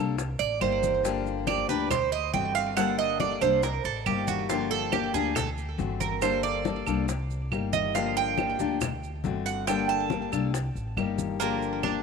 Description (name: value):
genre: latin, Cuban son and guajira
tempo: 139 BPM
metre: 4/4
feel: straight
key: G minor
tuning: A4 = 440 Hz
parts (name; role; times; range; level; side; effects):
- fingerpicked steel-string acoustic guitar; accompaniment; 0.0-12.0 s; D3 to A4; -30 LUFS; left 11 dB; none
- upright bass; bass; 0.0-12.0 s; G1 to D2; -33 LUFS; equal; none
- bongos and cowbell; percussion; 0.2-12.0 s; none; -38 LUFS; left 13 dB; none
- congas; percussion; 0.2-12.0 s; none; -36 LUFS; left 8 dB; none
- maracas; percussion; 0.2-12.0 s; none; -41 LUFS; right 16 dB; none
- Cuban tres; arpeggios; 0.4-12.0 s; Bb3 to A5; -28 LUFS; right 11 dB; tape echo
- claves; percussion; 0.6-12.0 s; none; -38 LUFS; right 13 dB; none
room: light reverb, small room ambience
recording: 1960s-style stereo with parts hard left and right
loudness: -25 LUFS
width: side -5 dB against mid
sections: 0.0-11.4 A section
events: Cuban tres solo 0.0-11.4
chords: 0.2 Cm7; 1.0 Gm7; 1.9 D7; 2.8 Gmadd9; 3.6 Cm7; 4.5 Gm7; 5.4 D7; 6.2 Gmadd9; 7.1 Cm7; 7.9 Gm7; 8.8 D7; 9.7 Gmadd9; 10.5 Cm7; 11.4 Gm7